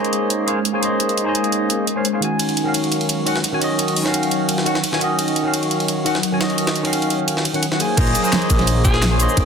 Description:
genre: liquid drum and bass.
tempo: 172 BPM.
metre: 4/4.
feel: straight.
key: unclear.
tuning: A4 = 440 Hz.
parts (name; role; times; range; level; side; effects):
barky tine electric piano; accompaniment; 0.0-9.4 s; Eb3 to Ab5; -20 LUFS; equal; phaser, low-pass filter, dub echo.
glassy FM pad; sustained chords; 0.0-9.4 s; Eb3 to C6; -24 LUFS; equal; ensemble chorus, built-in reverb, sidechain pumping.
pop drum kit; drums; 0.0-9.4 s; cabasa, crash cymbal, hi-hat, snare drum; -23 LUFS; right 2 dB; overdrive.
jungle sampler-style drum kit; drums; 2.4-9.4 s; hi-hat, ride cymbal, snare drum; -25 LUFS; right 1 dB; high-pass filter on snare, high-pass filter on cymbals, high-pass filter on hats, high-pass filter on room.
dark detuned saw bass; bass; 8.0-9.4 s; Bb1; -19 LUFS; equal; tube saturation.
electronic kick drum; drums; 8.0-9.4 s; none; -18 LUFS; equal; none.
raspy alto saxophone; melody; 8.8-9.1 s; Ab4; -24 LUFS; left 2 dB; ping-pong delay.
room: moderate plate reverb, RT60 1.8 s.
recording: dense, heavily limited modern master.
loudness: -16 LUFS.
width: side -6 dB against mid.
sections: 0.0-8.0 A section; 8.0-9.4 B section.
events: drop 8.0-9.4.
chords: 0.0 Ebm9; 8.0 Bbm11.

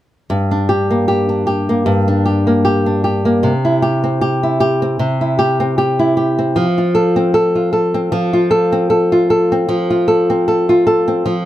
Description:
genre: pop.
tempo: 77 BPM.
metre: 4/4.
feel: swing 55% on 16ths.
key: F major.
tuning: A4 = 443 Hz.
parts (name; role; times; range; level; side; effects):
flamenco guitar; accompaniment; 0.3-11.5 s; G2 to A4; -12 LUFS; equal; none.
room: little or no reverb.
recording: close, detailed microphones.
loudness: -12 LUFS.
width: side -13 dB against mid.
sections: 0.3-11.5 A section.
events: none.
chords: 0.3 Gm; 3.4 C; 6.6 F.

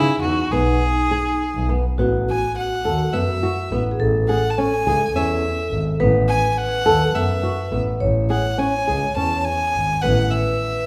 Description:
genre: contemporary instrumental, chamber music in an uneven meter.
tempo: 208 BPM (eighths).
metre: 7/8.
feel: straight.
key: unclear.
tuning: A4 = 440 Hz.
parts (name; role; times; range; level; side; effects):
clear violin; melody; 0.0-10.9 s; E4 to A5; -26 LUFS; equal; none.
vibraphone with medium mallets; second line; 0.0-10.9 s; D#4 to C#5; -27 LUFS; equal; none.
flamenco guitar; arpeggios; 0.0-10.3 s; B3 to A4; -26 LUFS; equal; none.
muted double bass; bass; 0.0-10.3 s; G#1 to C#3; -24 LUFS; equal; none.
room: moderate recital hall reverb, RT60 1.8 s.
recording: none.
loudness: -20 LUFS.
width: mono.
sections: 0.0-2.0 A section; 2.0-10.9 B section.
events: none.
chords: 0.0 Emaj7; 2.0 B7sus4/A; 4.0 Amaj7; 6.0 B7sus4/A; 8.0 Amaj7; 10.0 B7sus4/A.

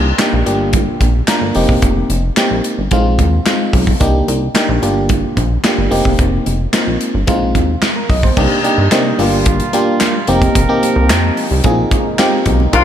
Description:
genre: early-eighties boogie funk.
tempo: 110 BPM.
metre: 4/4.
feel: straight.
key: unclear.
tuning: A4 = 441 Hz.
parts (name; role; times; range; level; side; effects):
FM electric piano; accompaniment; 0.0-12.8 s; Ab3 to Eb5; -16 LUFS; equal; chorus.
chorused synth bass; bass; 0.0-12.8 s; E1 to C3; -16 LUFS; equal; none.
modern studio drum kit; drums; 0.2-12.8 s; crash cymbal, handclaps, hi-hat, kick drum, snare drum; -16 LUFS; equal; none.
congas; percussion; 0.2-12.8 s; none; -26 LUFS; right 9 dB; none.
mellow brass ensemble; sustained chords; 8.4-12.8 s; C3 to Bb4; -21 LUFS; right 3 dB; none.
mellow horn section; second line; 12.7-12.8 s; F3 to F4; -10 LUFS; left 5 dB; none.
room: light reverb, studio reverb.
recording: none.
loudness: -11 LUFS.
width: side -10 dB against mid.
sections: 0.0-8.4 A section; 8.4-12.8 B section.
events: none.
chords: 0.5 Gm7; 1.6 F9sus4; 2.9 Bb9sus4; 4.0 Cm9; 4.8 Gm7; 5.9 F9sus4; 7.3 Bb9sus4; 8.4 Cm9; 9.2 Gm7; 10.3 F9sus4; 11.6 Bb9sus4.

